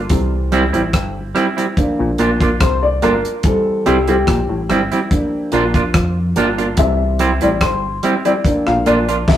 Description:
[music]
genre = roots reggae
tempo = 72 BPM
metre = 4/4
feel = straight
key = C mixolydian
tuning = A4 = 440 Hz
[part]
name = dark upright piano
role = stabs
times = 0.0-9.4 s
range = E3 to F5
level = -19 LUFS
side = left 2 dB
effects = none
[part]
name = fingered electric bass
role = bass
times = 0.0-9.4 s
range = G1 to F2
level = -21 LUFS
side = equal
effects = none
[part]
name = auto-wah clav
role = riff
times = 0.1-9.4 s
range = G2 to F3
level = -23 LUFS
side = left 2 dB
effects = none
[part]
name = damped 70s drum kit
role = drums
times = 0.1-9.4 s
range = hi-hat, kick drum, rim click, snare drum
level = -18 LUFS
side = equal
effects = none
[part]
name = semi-hollow electric guitar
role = accompaniment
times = 0.5-9.2 s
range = G3 to F4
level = -18 LUFS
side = right 3 dB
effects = spring reverb
[sound]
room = wet small room reverb, RT60 0.6 s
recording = rough rehearsal-room recording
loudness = -14 LUFS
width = side -11 dB against mid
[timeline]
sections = 0.0-9.4 A section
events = upright piano solo 0.0-9.4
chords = 0.1 C; 1.8 Bb; 3.4 C; 5.1 Bb; 6.8 C; 8.4 Bb

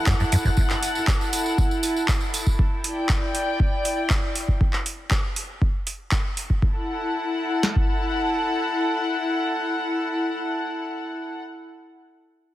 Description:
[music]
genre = acid house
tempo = 119 BPM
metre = 4/4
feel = straight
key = F# minor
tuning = A4 = 441 Hz
[part]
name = warm studio string section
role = texture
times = 0.0-11.4 s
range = E4 to G5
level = -25 LUFS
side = left 1 dB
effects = sidechain pumping
[part]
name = liquid acid bass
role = riff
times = 0.1-0.5 s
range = F#2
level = -23 LUFS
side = equal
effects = phaser, tube saturation, wide subtle chorus, sidechain pumping, tape echo
[part]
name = booming analog drum machine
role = drums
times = 0.1-7.9 s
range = kick drum, snare drum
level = -22 LUFS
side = equal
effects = overdrive
[part]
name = booming analog drum machine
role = drums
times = 0.1-6.5 s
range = handclaps, hi-hat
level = -28 LUFS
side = right 1 dB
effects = overdrive
[part]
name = tambourine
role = percussion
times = 0.1-2.6 s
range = none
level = -33 LUFS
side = right 2 dB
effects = none
[sound]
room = moderate lush hall reverb, RT60 1.9 s, digital ambience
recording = heavily compressed radio sound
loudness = -21 LUFS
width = side -14 dB against mid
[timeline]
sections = 0.0-6.6 A section; 6.6-10.7 B section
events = none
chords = 0.0 F#m7; 2.6 Em7; 6.6 F#m7

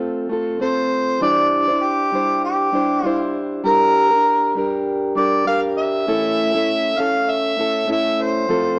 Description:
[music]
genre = pop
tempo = 99 BPM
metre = 4/4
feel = swing 55% on 16ths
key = unclear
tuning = A4 = 440 Hz
[part]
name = fingerpicked plugged-in steel-string acoustic guitar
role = accompaniment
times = 0.0-8.8 s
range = A2 to C5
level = -20 LUFS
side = equal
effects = none
[part]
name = warm harmonica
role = melody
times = 0.6-8.8 s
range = G4 to F5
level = -18 LUFS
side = equal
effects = none
[sound]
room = moderate plate reverb, RT60 2.2 s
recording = worn, warbling old tape, cassette tape, warbly pitch drift, small speaker sound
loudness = -16 LUFS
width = side -30 dB against mid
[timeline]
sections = 0.0-8.8 A section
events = none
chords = 0.0 F; 1.2 Cadd9/E; 3.6 Gm; 6.1 A

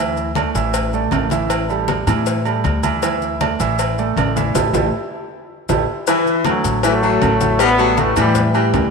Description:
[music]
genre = latin, salsa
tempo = 158 BPM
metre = 4/4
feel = straight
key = D major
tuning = A4 = 443 Hz
[part]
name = clear grand piano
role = accompaniment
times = 0.0-8.9 s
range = E3 to E6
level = -21 LUFS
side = right 7 dB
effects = none
[part]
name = upright bass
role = bass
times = 0.0-8.9 s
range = A1 to A2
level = -21 LUFS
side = left 1 dB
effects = none
[part]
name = congas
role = percussion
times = 0.2-8.9 s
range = none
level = -27 LUFS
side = left 9 dB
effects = none
[part]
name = maracas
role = percussion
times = 0.2-8.9 s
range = none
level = -32 LUFS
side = left 13 dB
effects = none
[part]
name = agogo bells and timbales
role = percussion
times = 0.4-8.9 s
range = none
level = -24 LUFS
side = right 9 dB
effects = none
[part]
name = cowbell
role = percussion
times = 0.4-8.9 s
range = none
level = -26 LUFS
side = left 10 dB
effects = none
[part]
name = clear baritone saxophone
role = second line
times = 6.1-8.9 s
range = E3 to G3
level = -19 LUFS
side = left 9 dB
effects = none
[part]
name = brilliant trombone section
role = melody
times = 6.5-8.5 s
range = D3 to B3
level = -17 LUFS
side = left 2 dB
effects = none
[sound]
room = wet echo chamber reverb, RT60 2.1 s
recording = 1960s-style stereo with parts hard left and right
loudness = -15 LUFS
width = side -4 dB against mid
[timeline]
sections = 0.0-6.1 A section; 6.1-8.9 B section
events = band accent 4.6-6.1; drum fill 5.3-6.1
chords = 0.0 Dsus2; 1.5 A5; 3.0 Dsus2; 4.6 A5; 6.1 Dadd9; 7.6 A5

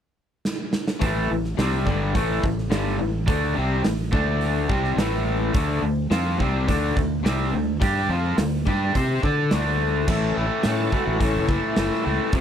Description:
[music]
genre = classic rock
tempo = 106 BPM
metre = 4/4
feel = straight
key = unclear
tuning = A4 = 440 Hz
[part]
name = huge arena drum kit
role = drums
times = 0.5-12.4 s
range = crash cymbal, hi-hat, kick drum, snare drum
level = -26 LUFS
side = right 1 dB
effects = none
[part]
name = overdriven electric guitar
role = riff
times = 1.0-12.4 s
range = F2 to D5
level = -27 LUFS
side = left 13 dB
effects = none
[part]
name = raw garage guitar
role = riff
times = 1.0-12.4 s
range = F2 to D5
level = -26 LUFS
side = right 8 dB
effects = overdrive
[part]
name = fingered electric bass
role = bass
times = 1.0-12.4 s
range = F1 to D3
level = -26 LUFS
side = equal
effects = none
[part]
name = bright tonewheel organ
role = sustained chords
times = 10.1-12.4 s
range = E3 to A4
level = -29 LUFS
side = left 1 dB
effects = overdrive, chorus vibrato, slow rotary speaker
[sound]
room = little or no reverb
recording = none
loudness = -20 LUFS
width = side -9 dB against mid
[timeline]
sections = 0.0-1.0 A section; 1.0-10.1 B section; 10.1-12.4 C section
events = drum fill 0.4-1.0; tonewheel organ solo 10.1-12.4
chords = 0.0 N.C.; 1.0 A5; 4.1 D5; 4.7 A5; 5.5 D5; 10.1 A

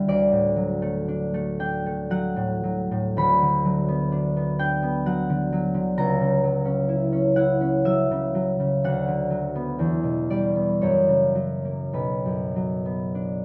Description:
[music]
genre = classical, solo harp piece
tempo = 50-65 BPM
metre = 3/4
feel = rubato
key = D major, B minor from 3.2 s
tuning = A4 = 440 Hz
[part]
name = concert harp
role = solo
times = 0.0-13.4 s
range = B1 to B5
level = -24 LUFS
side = equal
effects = none
[sound]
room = moderate stone room reverb, RT60 1.1 s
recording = none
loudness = -24 LUFS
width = mono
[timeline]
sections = 0.0-13.4 A section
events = none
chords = 0.1 D; 3.2 Bm/D; 6.0 F#7/C#; 8.8 Bm/D; 9.8 Em9; 10.8 F#; 12.0 Bm

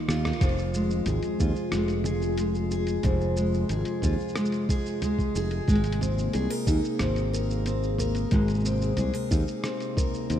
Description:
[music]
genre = folktronica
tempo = 91 BPM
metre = 4/4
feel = straight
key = F minor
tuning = A4 = 441 Hz
[part]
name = warbly tape-like pad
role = sustained chords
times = 0.0-10.4 s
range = C3 to Ab4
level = -32 LUFS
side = left 1 dB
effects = chorus, built-in reverb
[part]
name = fingerpicked steel-string acoustic guitar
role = arpeggios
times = 0.0-10.4 s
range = F2 to Bb4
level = -29 LUFS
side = equal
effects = tape echo
[part]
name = modern bright fingered electric bass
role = bass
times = 0.1-10.4 s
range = F1 to Eb2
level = -28 LUFS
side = equal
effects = none
[part]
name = lo-fi sampler-style drum kit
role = drums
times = 0.1-10.4 s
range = hi-hat, rim click, shaker, toms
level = -35 LUFS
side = right 1 dB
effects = none
[part]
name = electronic kick drum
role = drums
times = 0.4-10.1 s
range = none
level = -25 LUFS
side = equal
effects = none
[sound]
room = moderate lush hall reverb, RT60 2.0 s, digital ambience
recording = rough home demo mix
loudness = -24 LUFS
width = side -10 dB against mid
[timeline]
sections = 0.4-10.4 A section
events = break 0.0-0.4; drum fill 0.0-0.4; band accent 0.2-0.6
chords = 0.4 Fm; 5.7 Abadd9

